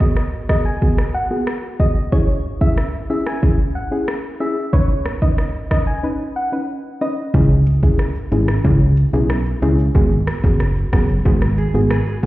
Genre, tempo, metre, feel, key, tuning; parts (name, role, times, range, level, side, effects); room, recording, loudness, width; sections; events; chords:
dancehall; 92 BPM; 4/4; straight; C# minor; A4 = 440 Hz
soft struck synth lead; melody; 0.0-7.1 s; C#5 to G#5; -26 LUFS; equal; chorus, phaser, ping-pong delay
soft round pluck; accompaniment; 0.0-12.3 s; B3 to B4; -23 LUFS; left 2 dB; chorus, sidechain pumping
afro-pop drum kit; drums; 0.0-12.3 s; hi-hat, kick drum, rim click, shaker; -18 LUFS; equal
plucky analog bass; bass; 7.3-12.3 s; F#1 to C#2; -16 LUFS; equal
nylon-string guitar; arpeggios; 11.6-12.3 s; G#4 to B4; -26 LUFS; right 6 dB
light reverb, digital ambience; heard muffled through a wall, stone room reverb, EQ; -15 LUFS; side -17 dB against mid
0.0-7.3 A section; 7.3-12.3 B section
break 6.0-7.3
0.0 G#m7; 2.1 C#m; 4.7 Badd9; 7.3 C#m; 9.9 G#m7